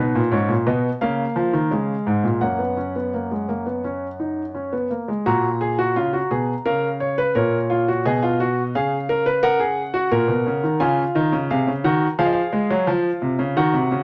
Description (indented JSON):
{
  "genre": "classical, baroque-style 3-part fugue for grand piano",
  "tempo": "86 BPM",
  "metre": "4/4",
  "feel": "straight",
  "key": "F# major",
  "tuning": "A4 = 440 Hz",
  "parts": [
    { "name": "warm concert grand piano", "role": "solo", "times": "0.0-14.0 s", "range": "F#2 to A#5", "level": "-21 LUFS", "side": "equal", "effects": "none" }
  ],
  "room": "moderate studio reverb, RT60 0.7 s",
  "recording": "nothing above 10.4 kHz",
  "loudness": "-21 LUFS",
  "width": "mono",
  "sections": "0.0-5.3 A section; 5.3-14.0 B section",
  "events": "none",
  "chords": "0.0 G#m; 1.0 C#; 2.4 F#; 5.3 F#/A#; 6.7 A#m/C#; 8.0 C#7/B; 9.4 F#/C#; 10.8 G#7"
}